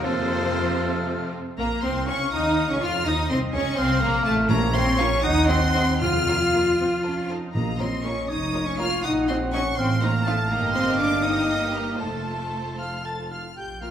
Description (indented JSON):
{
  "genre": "quick classical-period movement for symphony orchestra",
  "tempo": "74-84 BPM (dotted quarters)",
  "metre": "6/8",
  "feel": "rubato",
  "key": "Bb minor",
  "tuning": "A4 = 440 Hz",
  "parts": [
    { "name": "rich chamber violin section", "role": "melody", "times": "0.0-13.9 s", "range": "C5 to A6", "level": "-29 LUFS", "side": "left 2 dB", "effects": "none" },
    { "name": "rich chamber violin section", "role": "second line", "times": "0.0-13.9 s", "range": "A3 to F5", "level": "-33 LUFS", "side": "left 1 dB", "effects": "none" },
    { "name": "silver concert flute", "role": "second line", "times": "0.0-1.3, 12.8-13.9 s", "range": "F5 to F6", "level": "-35 LUFS", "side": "left 1 dB", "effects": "none" },
    { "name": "warm oboe", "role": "second line", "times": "0.0-13.9 s", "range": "A4 to A5", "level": "-29 LUFS", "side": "right 2 dB", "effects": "none" },
    { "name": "warm studio viola section", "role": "accompaniment", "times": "0.0-13.9 s", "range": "F3 to Gb4", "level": "-32 LUFS", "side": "right 2 dB", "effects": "none" },
    { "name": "mellow French horn section", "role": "sustained chords", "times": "0.0-13.9 s", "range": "A3 to A4", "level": "-28 LUFS", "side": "left 2 dB", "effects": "none" },
    { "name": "clear chamber cello section", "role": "bass", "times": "0.0-12.8 s", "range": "C3 to F4", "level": "-29 LUFS", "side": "right 1 dB", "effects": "none" },
    { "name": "rich studio double bass section", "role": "bass", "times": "0.0-13.9 s", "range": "F1 to F2", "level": "-28 LUFS", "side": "right 1 dB", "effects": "none" },
    { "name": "timpani", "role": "percussion", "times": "4.5-8.3 s", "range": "F2 to Bb2", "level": "-28 LUFS", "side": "equal", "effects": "none" }
  ],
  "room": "wet recital hall reverb, RT60 1.7 s",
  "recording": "recorded in a church or concert hall",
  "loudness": "-21 LUFS",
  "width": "side -9 dB against mid",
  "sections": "0.0-1.6 A section; 1.6-13.6 B section",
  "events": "none",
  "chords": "0.0 F; 1.6 Bbm; 3.1 Cm; 3.8 F; 4.5 Bbm; 5.2 Cdim/Eb; 6.0 Bbm/F; 6.8 F; 7.6 Bbm; 9.0 Cm7b5/Bb; 9.8 F7/A; 10.5 Eb/G; 12.0 F"
}